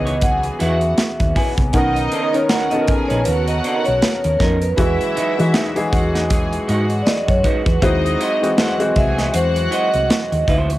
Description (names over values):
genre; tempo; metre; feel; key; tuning
lush 1970s-style soul; 79 BPM; 4/4; swing 58% on 16ths; B major; A4 = 441 Hz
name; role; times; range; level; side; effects
vibraphone with medium hard mallets; melody; 0.0-10.8 s; A#4 to G#5; -20 LUFS; right 1 dB; plate reverb
warm studio string section; second line; 0.0-10.4 s; D#4 to G#5; -26 LUFS; equal; cassette tape, plate reverb
clear grand piano; accompaniment; 0.0-10.8 s; D#3 to A#4; -23 LUFS; left 2 dB; cassette tape, plate reverb
warm studio string section; sustained chords; 0.0-10.8 s; C#3 to A#4; -30 LUFS; equal; cassette tape
hollow-body short-scale fingered electric bass; bass; 0.0-10.8 s; A#1 to E3; -20 LUFS; equal; none
electric guitar through a small old amp; riff; 0.1-10.7 s; G#3 to D#5; -26 LUFS; right 2 dB; cassette tape
modern studio drum kit; drums; 0.1-10.8 s; hi-hat, kick drum, snare drum; -19 LUFS; equal; none
room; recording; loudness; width
light reverb; home recording on cassette; -15 LUFS; side -16 dB against mid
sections
0.0-10.8 A section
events
vibraphone solo 0.0-10.8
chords
0.0 C#m11; 1.7 Bmaj9; 4.8 Emaj9; 7.8 G#7b13